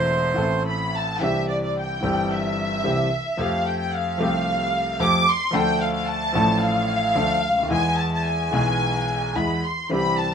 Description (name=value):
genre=tango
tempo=110 BPM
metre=4/4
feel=rubato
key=unclear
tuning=A4 = 440 Hz
part: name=bandoneon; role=melody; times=0.0-0.6 s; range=C5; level=-22 LUFS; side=right 2 dB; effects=none
part: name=clear concert grand piano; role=accompaniment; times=0.0-10.3 s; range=E1 to A4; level=-23 LUFS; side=equal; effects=none
part: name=dark studio violin section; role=second line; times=0.7-10.3 s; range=D5 to D6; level=-23 LUFS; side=equal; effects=none
room=moderate large studio reverb, RT60 0.9 s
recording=minimal, uncompressed stereo recording, vinyl crackle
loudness=-20 LUFS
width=side -7 dB against mid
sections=0.0-1.2 A section; 1.2-10.3 B section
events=violin section solo 1.2-10.3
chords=0.0 Am; 1.2 Cadd9; 3.4 Fadd9; 5.5 Dm; 7.7 E